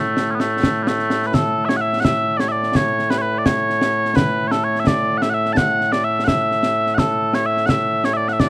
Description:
scottish traditional, Scottish pipe music; 85 BPM (dotted quarters); 6/8; straight; A major; A4 = 440 Hz
mellow small bagpipes; melody; 0.0-8.5 s; A2 to A5; -17 LUFS; equal
concert snare drum and concert bass drum; drums; 0.2-8.5 s; -20 LUFS; equal
little or no reverb; recorded outdoors, with no room sound; -16 LUFS; side -24 dB against mid
0.0-1.3 A section; 1.3-8.5 B section

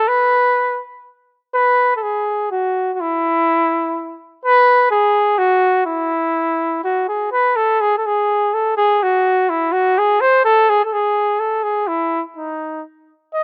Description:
alpine folk; 125 BPM; 3/4; rubato; E major; A4 = 441 Hz
clear flugelhorn; solo; 0.0-13.4 s; D#4 to D#5; -17 LUFS; equal
little or no reverb; recorded outdoors, with no room sound; -17 LUFS; mono
0.0-7.3 A section; 7.3-13.4 B section

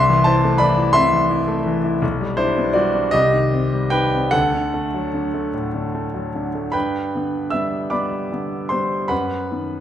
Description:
classical, romantic character piece for solo piano; 51 BPM (dotted quarters); 6/8; uneven beats, rubato; G major; A4 = 440 Hz
warm grand piano; solo; 0.0-9.8 s; B1 to E6; -17 LUFS; equal
wet recital hall reverb, RT60 1.4 s; -17 LUFS; side -10 dB against mid
0.0-6.7 A section; 6.7-9.8 B section
0.0 Am/C; 2.0 G/B; 3.1 Cm; 4.3 D; 6.7 G; 9.1 B/F#

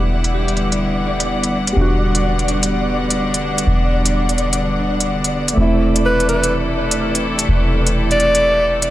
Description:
future garage; 126 BPM; 4/4; swing 63% on 16ths; E minor; A4 = 440 Hz
felt-muted upright piano; accompaniment; 0.0-8.9 s; G3 to F#5; -24 LUFS; right 2 dB; dub echo
bright chamber string section; sustained chords; 0.0-8.9 s; C3 to F#5; -20 LUFS; left 1 dB
soft 808-style bass; bass; 0.0-8.9 s; E1; -20 LUFS; equal; tube saturation
flickering grainy texture; texture; 0.0-8.9 s; D5; -25 LUFS; right 1 dB; built-in reverb
electronic hi-hat; drums; 0.2-8.9 s; -20 LUFS; equal; overdrive, low-pass filter on hats, low-pass filter on snare, low-pass filter on perc, low-pass filter on room
warm alto saxophone; melody; 6.1-8.8 s; B4 to D5; -19 LUFS; equal; dub echo
moderate spring reverb, RT60 1.6 s, digital ambience; echo-heavy mix; -14 LUFS; side -14 dB against mid
0.0-8.9 A section
0.0 Em9; 5.6 Am/E

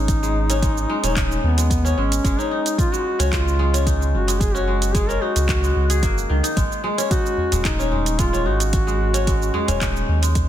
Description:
organic downtempo; 111 BPM; 4/4; straight; A4 = 439 Hz
mellow duduk; melody; 0.0-10.1 s; B3 to A#4; -25 LUFS; equal; ping-pong delay
kora; arpeggios; 0.0-10.5 s; D#3 to G#4; -24 LUFS; left 1 dB; ping-pong delay
warm sub bass; bass; 0.0-10.5 s; D#1 to D#2; -21 LUFS; equal
afro-pop drum kit; drums; 0.1-10.5 s; handclaps, hi-hat, shaker; -28 LUFS; right 3 dB; studio reverb
electronic kick drum; drums; 0.1-10.5 s; -23 LUFS; equal; studio reverb
udu; percussion; 7.4-9.8 s; -26 LUFS; equal
light reverb, studio reverb; dense, heavily limited modern master; -17 LUFS; side -11 dB against mid
0.0-10.5 A section
0.0 G#m; 2.2 F#add9; 6.6 G#5

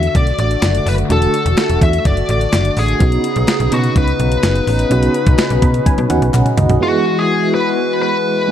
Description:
1980s-style pop; 126 BPM; 4/4; straight; E major; A4 = 440 Hz
smooth overdriven lead guitar; melody; 0.0-8.5 s; F#4 to E5; -18 LUFS; left 3 dB
FM electric piano with tremolo; accompaniment; 0.0-8.5 s; G#3 to B5; -20 LUFS; right 3 dB; phaser
brassy analog pad; sustained chords; 0.0-8.5 s; C#3 to F#4; -22 LUFS; left 1 dB; chorus, tremolo
slap-like FM bass; bass; 0.0-6.8 s; E1 to B2; -16 LUFS; equal
clean 12-bit digital drum machine; drums; 0.0-6.8 s; hi-hat, kick drum, snare drum, toms; -16 LUFS; equal
group handclap; percussion; 0.6-6.5 s; -34 LUFS; left 5 dB
light reverb; dark, warm production; -12 LUFS; side -10 dB against mid
0.0-6.8 A section; 6.8-8.5 B section
FM electric piano fill 5.4-6.8; drum fill 5.9-6.8
0.0 D; 3.0 Badd9; 6.8 Eadd9

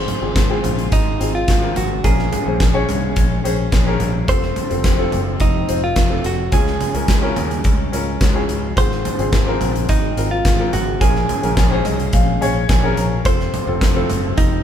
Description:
piano-driven pop; 107 BPM; 4/4; straight; Bb minor; A4 = 440 Hz
direct-recorded clean electric guitar; melody; 0.0-14.6 s; Eb4 to C5; -24 LUFS; right 1 dB
clear concert grand piano; accompaniment; 0.0-14.6 s; Ab2 to Bb5; -23 LUFS; left 2 dB
warm studio string section; sustained chords; 0.0-14.6 s; F3 to F4; -32 LUFS; left 2 dB
modern bright picked electric bass; bass; 0.0-14.6 s; F1 to Eb2; -22 LUFS; equal
huge arena drum kit; drums; 0.1-14.5 s; hi-hat, kick drum, snare drum, toms; -18 LUFS; equal
light reverb; band playing live in one room; -15 LUFS; side -9 dB against mid
0.0-14.6 A section
grand piano fill 11.6-13.3
0.0 Ab6; 2.0 Bbm7; 4.3 F; 6.5 Db; 8.8 Ab6; 11.0 Bbm7; 13.3 F

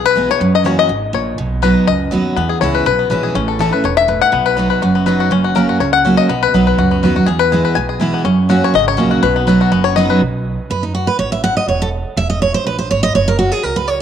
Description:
bluegrass; 245 BPM; 4/4; straight; B major; A4 = 441 Hz
bluegrass banjo; melody; 0.0-10.2 s; B3 to G#5; -15 LUFS; left 8 dB
picked steel-string acoustic guitar; accompaniment; 0.0-14.0 s; E2 to F#5; -15 LUFS; right 3 dB
upright bass; bass; 0.0-14.0 s; E1 to F#2; -22 LUFS; right 2 dB
moderate spring reverb, RT60 2.5 s; -12 LUFS; side -9 dB against mid
0.0-10.2 A section; 10.2-14.0 A section
five-string banjo solo 0.0-10.2; steel-string acoustic guitar solo 10.2-14.0
0.4 F#7; 1.4 B; 2.4 E6; 3.3 A; 4.3 B; 5.3 F#; 6.3 B; 7.3 E; 8.3 F#; 9.2 B; 10.2 B5; 11.2 A5; 12.2 E; 13.1 F#5

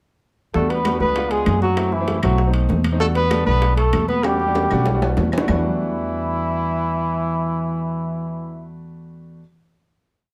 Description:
Afro-Cuban jazz; 195 BPM; 4/4; straight; E minor; A4 = 441 Hz
breathy trumpet; melody; 0.5-8.7 s; E4 to B4; -26 LUFS; equal; plate reverb
clear baby grand piano; accompaniment; 0.5-9.4 s; G3 to A4; -29 LUFS; equal
upright bass; bass; 0.5-9.4 s; B1 to F#2; -24 LUFS; equal
bongos; percussion; 0.5-5.6 s; -31 LUFS; equal
trombone with metal mute; second line; 0.6-8.7 s; E3 to B3; -29 LUFS; equal
congas; percussion; 0.6-5.6 s; -30 LUFS; equal
timbales; percussion; 0.7-5.6 s; -32 LUFS; equal
claves; percussion; 0.8-5.6 s; -37 LUFS; equal
light reverb; -20 LUFS; mono
0.5-5.5 A section; 5.5-7.9 final chord
drum fill 4.2-5.5
0.5 Em11; 1.2 C#7b9; 1.8 F#m7b5; 2.4 B7b9; 3.0 Em11

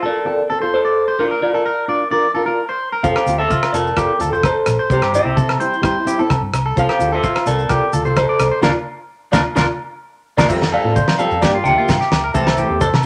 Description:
highlife guitar band; 129 BPM; 4/4; straight; F major; A4 = 440 Hz
fingerpicked plugged-in steel-string acoustic guitar; accompaniment; 0.0-13.1 s; E3 to Bb4; -24 LUFS; equal
electric guitar at the edge of break-up; arpeggios; 0.0-13.0 s; D4 to D5; -23 LUFS; equal; spring reverb
electric guitar through a small old amp; melody; 0.1-12.9 s; F4 to G5; -22 LUFS; equal; phaser
vintage muted fingered electric bass; bass; 3.0-13.1 s; F1 to F3; -25 LUFS; equal
damped 70s drum kit; drums; 3.0-13.0 s; crash cymbal, hi-hat, kick drum, rim click, snare drum; -22 LUFS; equal
congas; percussion; 3.0-12.9 s; -28 LUFS; equal
maracas; percussion; 3.0-13.1 s; -40 LUFS; equal
agogo bells; percussion; 3.2-13.1 s; -28 LUFS; equal
wet studio reverb, RT60 0.5 s; -17 LUFS; mono
0.0-10.5 A section; 10.5-13.1 B section
band accent 8.6-10.5; drum fill 9.9-10.5
0.0 F/C; 1.2 Bb/D; 3.0 F; 4.9 C; 6.8 F/C; 8.6 Bb/D; 10.5 Fadd9; 11.4 Gm7; 12.3 C6

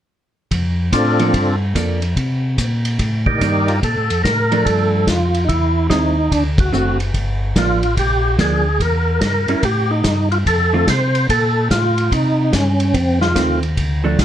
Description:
soul jazz organ trio; 145 BPM; 4/4; swing 64% on 8ths; Bb major; A4 = 440 Hz
mellow tonewheel organ; bass; 0.5-14.2 s; F#1 to C3; -18 LUFS; equal; slow rotary speaker
vintage drum kit; drums; 0.5-14.2 s; hi-hat, kick drum, ride cymbal, snare drum; -22 LUFS; equal; vintage 12-bit sampler grit
percussive tonewheel organ; melody; 0.9-14.2 s; C4 to D5; -18 LUFS; equal; slow rotary speaker, overdrive, chorus vibrato, plate reverb
vintage hollow-body jazz guitar; accompaniment; 1.2-14.2 s; D3 to A4; -21 LUFS; right 3 dB; plate reverb
moderate small room ambience, RT60 0.5 s; dark, warm production; -14 LUFS; side -10 dB against mid
0.5-3.8 A section; 3.8-14.2 B section
band accent 6.5
0.5 Bbmaj7/F; 2.2 Cm9; 3.8 Bbmaj7; 5.5 Emmaj7; 6.3 D7; 7.1 Gm7; 8.8 Edim; 9.6 F9 (rootless); 10.5 Dm7 (rootless); 12.1 Cm; 12.9 F7

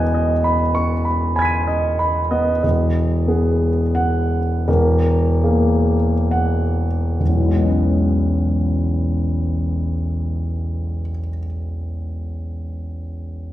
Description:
classical, impressionist solo piano; 32-52 BPM; 3/4; rubato; E major; A4 = 440 Hz
clear grand piano; solo; 0.0-13.5 s; E1 to D#7; -17 LUFS; equal
wet recital hall reverb, RT60 1.4 s; heard from further back in the room; -17 LUFS; side -14 dB against mid
0.0-2.6 A section; 2.6-7.2 B section; 7.2-12.0 C section
slowing down 0.0-7.2
0.0 Emaj7; 2.6 Emaj9; 4.7 F#9/E; 7.2 E6

